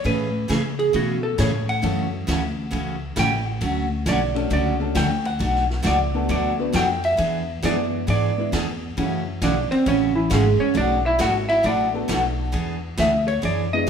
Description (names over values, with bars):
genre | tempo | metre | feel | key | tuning
country, western swing | 134 BPM | 4/4 | swing 67% on 8ths | unclear | A4 = 442 Hz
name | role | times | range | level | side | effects
vintage hollow-body jazz guitar | second line | 0.0-13.9 s | E3 to G5 | -23 LUFS | right 2 dB | none
picked steel-string acoustic guitar | accompaniment | 0.0-13.9 s | B2 to G#4 | -24 LUFS | equal | none
upright bass | bass | 0.0-13.9 s | G#1 to C#3 | -25 LUFS | left 1 dB | none
vintage drum kit | drums | 0.0-13.9 s | hi-hat, kick drum, ride cymbal, snare drum | -32 LUFS | left 1 dB | none
tack piano | accompaniment | 1.8-9.2, 11.9-13.9 s | G#3 to B4 | -28 LUFS | left 4 dB | none
room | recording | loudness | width
wet large studio reverb, RT60 1.1 s | band playing live in one room | -19 LUFS | side -7 dB against mid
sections
0.0-13.9 A section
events
hollow-body jazz guitar solo 0.0-13.9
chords
0.0 Amaj7; 1.8 F#m7; 3.6 Dmaj7; 5.4 Bm7; 7.2 E7; 9.0 F#m9; 10.8 Bm7; 12.5 E7